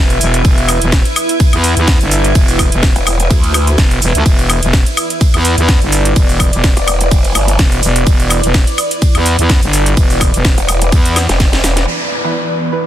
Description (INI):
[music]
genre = bass house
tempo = 126 BPM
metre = 4/4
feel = swing 55% on 16ths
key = unclear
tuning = A4 = 441 Hz
[part]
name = sweeping resonant pad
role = sustained chords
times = 0.2-12.9 s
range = E3 to D5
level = -28 LUFS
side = equal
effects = none
[part]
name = growling FM bass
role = bass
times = 0.0-11.3 s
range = E1 to E2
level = -13 LUFS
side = equal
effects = tube saturation, sidechain pumping
[part]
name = granular cloud pad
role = texture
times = 0.0-12.9 s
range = E4 to E5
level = -19 LUFS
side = right 1 dB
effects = built-in reverb, sidechain pumping
[part]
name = house drum kit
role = drums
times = 0.1-12.9 s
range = cabasa, crash cymbal, hi-hat, ride cymbal, snare drum, woodblock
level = -17 LUFS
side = equal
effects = low-pass filter on hats, low-pass filter on perc, low-pass filter on snare, low-pass filter on cymbals, low-pass filter on room
[part]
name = electronic kick drum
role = drums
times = 0.4-11.5 s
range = none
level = -11 LUFS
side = equal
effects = none
[part]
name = growl bass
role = bass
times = 3.0-3.8, 6.8-7.6, 10.6-11.9 s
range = E1 to D2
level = -13 LUFS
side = equal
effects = chorus, tube saturation, sidechain pumping
[part]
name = downlifter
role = sound effects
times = 11.9-12.9 s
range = none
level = -20 LUFS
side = equal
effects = none
[part]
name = band-passed chord stab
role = stabs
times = 12.2-12.9 s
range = E3 to B4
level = -19 LUFS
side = right 3 dB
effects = phaser, ensemble chorus, sidechain pumping
[sound]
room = little or no reverb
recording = dense, heavily limited modern master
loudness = -9 LUFS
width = side -12 dB against mid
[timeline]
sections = 0.0-11.9 A section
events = drop 0.0-11.9; drum fill 11.2-11.9; band accent 11.8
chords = 0.0 E5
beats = | 0.45 0.92 1.40 1.88 | 2.35 2.83 3.31 3.78 | 4.26 4.73 5.21 5.69 | 6.16 6.64 7.11 7.59 | 8.07 8.54 9.02 9.49 | 9.97 10.45 10.92 11.40 | 11.88 12.35 12.83